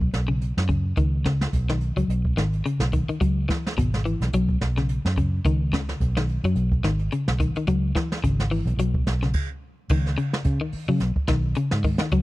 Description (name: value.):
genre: afrobeat.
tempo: 108 BPM.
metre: 4/4.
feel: swing 56% on 16ths.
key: C# minor.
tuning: A4 = 439 Hz.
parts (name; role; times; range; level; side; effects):
electric guitar at the edge of break-up; arpeggios; 0.0-12.2 s; B2 to F#3; -26 LUFS; left 3 dB; none.
vintage muted fingered electric bass; bass; 0.0-12.2 s; G#1 to C#3; -24 LUFS; equal; none.
jazz brush drum kit; drums; 0.0-12.2 s; crash cymbal, hi-hat, kick drum, snare drum; -26 LUFS; right 1 dB; none.
room: small room ambience.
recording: dry, close 1970s-style studio recording.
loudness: -21 LUFS.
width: side -18 dB against mid.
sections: 0.0-9.9 A section; 9.9-12.2 B section.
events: stop 9.3-9.9.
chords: 0.0 Bsus2; 1.0 C#7sus2; 2.1 B69; 3.2 C#m7; 4.3 Bsus2; 5.4 C#9sus4; 6.6 B69; 7.7 C#m; 8.8 Bsus2; 9.9 C#sus2; 11.0 B69.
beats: 0.43 | 0.98 1.54 2.10 2.66 | 3.22 3.77 4.33 4.89 | 5.45 6.00 6.56 7.12 | 7.68 8.23 8.79 9.35 | 9.90 10.46 11.02 11.57 | 12.13.